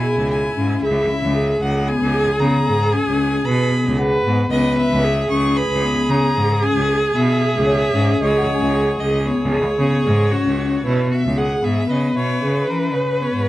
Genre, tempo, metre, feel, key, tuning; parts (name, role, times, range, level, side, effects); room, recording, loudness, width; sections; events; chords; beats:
contemporary instrumental, chamber music in an uneven meter; 114 BPM; 7/4; straight; C# dorian; A4 = 443 Hz
clear violin; melody; 0.0-13.5 s; A#4 to C#6; -24 LUFS; left 2 dB
clear viola; second line; 0.0-13.5 s; E4 to B4; -24 LUFS; right 2 dB
vibraphone with soft mallets; arpeggios; 0.0-13.5 s; B3 to B4; -20 LUFS; left 1 dB
bright cello; bass; 0.2-13.5 s; C#2 to E3; -20 LUFS; right 1 dB
large celesta; texture; 4.0-12.9 s; C#5 to G#5; -28 LUFS; equal
little or no reverb; worn, warbling old tape, cassette tape, warbly pitch drift; -16 LUFS; side -15 dB against mid
0.0-11.9 A section; 11.9-13.5 B section
0.0 C#m7
0.30 | 0.82 1.35 1.88 2.40 2.93 3.46 3.98 | 4.51 5.04 5.57 6.09 6.62 7.15 7.67 | 8.20 8.73 9.25 9.78 10.31 10.84 11.36 | 11.89 12.42 12.95 13.47